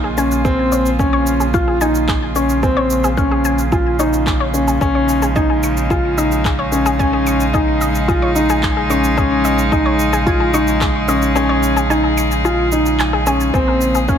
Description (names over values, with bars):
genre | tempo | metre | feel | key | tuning
piano and strings electronica | 110 BPM | 4/4 | straight | unclear | A4 = 440 Hz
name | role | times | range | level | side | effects
rich string quartet | sustained chords | 0.0-14.2 s | Db3 to Ab4 | -21 LUFS | right 1 dB | sidechain pumping
analog pluck | arpeggios | 0.0-14.2 s | Ab4 to Db6 | -23 LUFS | left 3 dB | chorus, sidechain pumping, ping-pong delay
warm upright piano | riff | 0.0-14.2 s | C4 to F4 | -17 LUFS | left 1 dB | ping-pong delay
warm sub bass | bass | 0.0-14.2 s | Bb1 | -21 LUFS | right 1 dB | sidechain pumping
electronic shaker and handclaps | drums | 0.2-14.2 s | none | -26 LUFS | right 2 dB | none
electronic kick drum | drums | 0.4-14.2 s | none | -20 LUFS | right 1 dB | none
room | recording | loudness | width
light reverb | none | -13 LUFS | side -8 dB against mid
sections
0.0-14.2 A section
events
kick drops out 11.4-13.5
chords
0.0 Bbm7; 4.8 Absus4/Bb; 13.5 Bbm7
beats
| 0.45 0.99 1.54 2.09 | 2.63 3.18 3.72 4.27 | 4.81 5.36 5.90 6.45 | 7.00 7.54 8.09 8.63 | 9.18 9.72 10.27 10.81 | 11.36 11.90 12.45 12.99 | 13.54 14.09